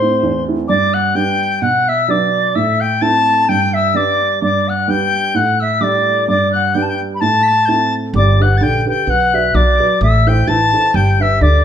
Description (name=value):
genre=celtic folk, Celtic polka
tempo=129 BPM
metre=2/4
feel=swing 55% on 8ths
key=unclear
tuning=A4 = 439 Hz
part: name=wooden flute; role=melody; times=0.0-11.6 s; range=C5 to B5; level=-16 LUFS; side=equal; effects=none
part: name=tin whistle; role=second line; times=0.0-11.6 s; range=C6 to B6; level=-18 LUFS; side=left 6 dB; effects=none
part: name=warm upright piano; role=accompaniment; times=0.0-11.6 s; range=E2 to D5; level=-18 LUFS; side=right 4 dB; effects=none
part: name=upright bass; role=bass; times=8.1-11.6 s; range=G1 to D2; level=-14 LUFS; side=equal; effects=none
room=moderate large studio reverb, RT60 0.9 s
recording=band playing live in one room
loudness=-12 LUFS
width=side -9 dB against mid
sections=0.7-8.1 A section; 8.1-11.6 A section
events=none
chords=0.0 Am; 0.7 G; 1.6 Bm; 2.5 Am; 3.5 G; 5.3 Dsus4/A; 6.3 G; 7.2 Am; 8.1 G; 9.1 Bm; 10.0 Am; 10.9 G